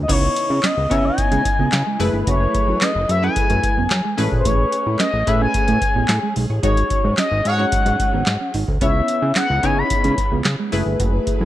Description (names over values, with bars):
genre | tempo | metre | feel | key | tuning
early-eighties boogie funk | 110 BPM | 4/4 | straight | C# minor | A4 = 440 Hz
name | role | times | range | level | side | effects
expressive synth lead | melody | 0.0-10.3 s | B#4 to B5 | -21 LUFS | left 3 dB | chorus
dark studio string section | sustained chords | 0.0-11.4 s | C#3 to D#5 | -32 LUFS | right 2 dB | none
fat analog bass | bass | 0.0-11.4 s | F#1 to C#3 | -21 LUFS | equal | none
funky polysynth comp | accompaniment | 0.1-11.4 s | G#3 to D#5 | -24 LUFS | left 1 dB | chorus
mellow electric guitar | riff | 0.1-11.4 s | G#3 to F#4 | -27 LUFS | right 8 dB | wide subtle chorus
booming analog drum machine | drums | 0.1-11.4 s | crash cymbal, handclaps, hi-hat, kick drum, snare drum | -21 LUFS | equal | gated reverb
warm horn section | second line | 6.6-7.6 s | F#4 to C#5 | -26 LUFS | right 5 dB | none
room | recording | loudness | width
little or no reverb | none | -16 LUFS | side -13 dB against mid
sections
0.1-11.4 A section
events
band accent 6.6-8.8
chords
0.1 C#m9; 2.0 F#m11; 4.2 Amaj9; 6.6 G#7sus4; 8.8 C#m9; 10.7 F#m11